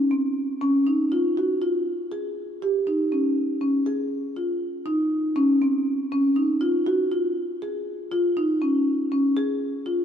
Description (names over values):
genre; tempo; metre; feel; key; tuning
progressive instrumental, progressive; 240 BPM (eighths); 11/8; straight; unclear; A4 = 440 Hz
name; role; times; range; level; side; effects
marimba with medium mallets; solo; 0.1-10.0 s; C4 to Ab4; -21 LUFS; equal; none
room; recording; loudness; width
wet plate reverb, RT60 3.5 s; heard from further back in the room; -21 LUFS; side -8 dB against mid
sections
0.0-3.9 A section; 3.9-10.0 B section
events
none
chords
none